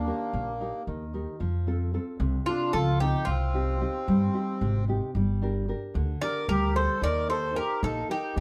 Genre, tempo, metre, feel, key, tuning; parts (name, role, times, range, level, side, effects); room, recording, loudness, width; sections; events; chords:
greek folk, Greek bouzouki band; 224 BPM (eighths); 7/8; straight; A4 = 440 Hz
Greek bouzouki; melody; 0.0-8.4 s; D4 to D5; -33 LUFS; equal
accordion; second line; 0.0-8.4 s; Bb3 to Bb4; -35 LUFS; equal
nylon-string guitar; accompaniment; 0.0-8.4 s; C3 to Bb4; -34 LUFS; equal
upright bass; bass; 0.0-8.4 s; G1 to G2; -31 LUFS; equal
moderate studio reverb, RT60 0.6 s; -28 LUFS; mono
0.0-1.4 A section; 1.4-8.4 B section
0.0 Eb; 1.4 F; 3.3 Cm; 5.1 Gm; 7.0 Eb